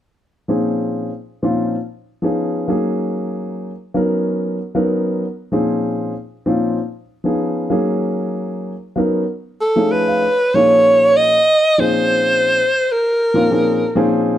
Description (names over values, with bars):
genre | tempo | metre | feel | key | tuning
jazz | 96 BPM | 4/4 | swing 54% on 16ths | Bb phrygian, Bb minor from 10.5 s | A4 = 440 Hz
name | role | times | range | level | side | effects
dark grand piano | accompaniment | 0.5-14.4 s | Bb2 to A5 | -18 LUFS | left 1 dB | none
warm alto saxophone | melody | 9.6-14.2 s | A4 to Eb5 | -13 LUFS | right 1 dB | none
room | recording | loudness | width
light reverb | none | -15 LUFS | side -11 dB against mid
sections
0.5-10.5 A section; 10.5-14.4 B section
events
grand piano fill 9.6-10.5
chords
0.5 Bbm11; 1.8 Db7; 2.7 Gb6; 4.0 Bmaj9; 5.5 Bbm11; 6.8 Db7; 7.7 Gb6; 9.0 Bmaj9; 9.3 F7alt; 10.5 Bbm11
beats
| 0.50 1.13 1.75 2.38 | 3.01 3.64 4.26 4.89 | 5.52 6.15 6.77 7.40 | 8.03 8.66 9.28 9.91 | 10.54 11.17 11.79 12.42 | 13.05 13.68 14.30